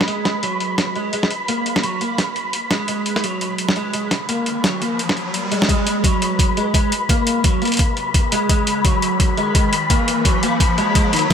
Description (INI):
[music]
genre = half-time drum and bass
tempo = 171 BPM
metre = 4/4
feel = swing 58% on 16ths, half-time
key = G# minor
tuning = A4 = 440 Hz
[part]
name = electric guitar at the edge of break-up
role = arpeggios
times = 0.0-11.3 s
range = D#3 to A#3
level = -22 LUFS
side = right 1 dB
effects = ensemble chorus, low-pass filter, ping-pong delay
[part]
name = boom bap sampler-style drum kit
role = drums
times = 0.0-11.3 s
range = hi-hat, snare drum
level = -21 LUFS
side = equal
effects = low-pass filter on hats, small room ambience, low-pass filter on snare
[part]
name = flickering grainy texture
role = texture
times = 0.0-11.3 s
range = B5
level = -24 LUFS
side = left 2 dB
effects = built-in reverb
[part]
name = riser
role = sound effects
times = 4.0-11.3 s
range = none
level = -26 LUFS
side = left 1 dB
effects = none
[part]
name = electronic kick drum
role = drums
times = 5.7-11.3 s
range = none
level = -18 LUFS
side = equal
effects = overdrive, small room ambience
[sound]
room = light reverb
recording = none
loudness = -16 LUFS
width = side -7 dB against mid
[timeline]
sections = 0.0-5.7 A section; 5.7-11.3 B section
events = riser 4.0-5.7, 5.7-11.3; build-up 5.7-11.3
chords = 0.0 B5; 5.7 G#m